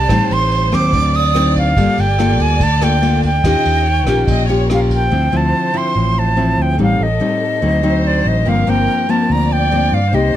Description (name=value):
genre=bossa nova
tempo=144 BPM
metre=4/4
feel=straight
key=D minor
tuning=A4 = 444 Hz
part: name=silver concert flute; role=melody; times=0.0-10.4 s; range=D5 to Eb6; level=-18 LUFS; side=right 1 dB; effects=none
part: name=warm studio violin section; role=second line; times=0.0-10.4 s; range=G#4 to Eb5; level=-24 LUFS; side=right 1 dB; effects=none
part: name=nylon-string guitar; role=accompaniment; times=0.0-10.4 s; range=G2 to A4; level=-18 LUFS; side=left 3 dB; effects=none
part: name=fingered electric bass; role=bass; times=0.0-10.4 s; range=G1 to G2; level=-16 LUFS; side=right 1 dB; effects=none
part: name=vintage brush drum kit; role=drums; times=0.1-5.0 s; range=kick drum, ride cymbal, rim click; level=-24 LUFS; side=right 1 dB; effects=none
room=light reverb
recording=close, detailed microphones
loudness=-12 LUFS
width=side -12 dB against mid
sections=0.0-5.1 A section; 5.1-10.4 B section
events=none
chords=0.1 Am7b5; 0.9 D7b9; 1.8 Gm9; 3.4 Eb9; 5.1 Dm9; 6.8 Am7b5; 7.6 D7b9; 8.5 Gm7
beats=| 0.10 0.51 0.93 1.35 | 1.77 2.19 2.60 3.02 | 3.44 3.86 4.28 4.69 | 5.11 5.53 5.95 6.37 | 6.79 7.20 7.62 8.04 | 8.46 8.88 9.29 9.71 | 10.13